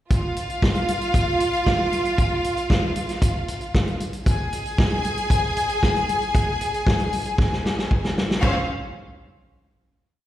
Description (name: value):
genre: disco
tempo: 115 BPM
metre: 4/4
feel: straight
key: unclear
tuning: A4 = 444 Hz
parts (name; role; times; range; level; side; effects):
- bright studio string section; second line; 0.1-8.7 s; Db4 to Ab5; -24 LUFS; equal; slapback echo
- vintage drum kit; drums; 0.1-8.5 s; crash cymbal, hi-hat, kick drum, snare drum; -22 LUFS; equal; none
room: studio reverb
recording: live gig heard through the venue's PA, recital hall reverb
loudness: -20 LUFS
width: side -13 dB against mid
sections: 0.1-8.4 breakdown; 8.4-10.3 final chord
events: drum fill 7.4-8.4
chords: none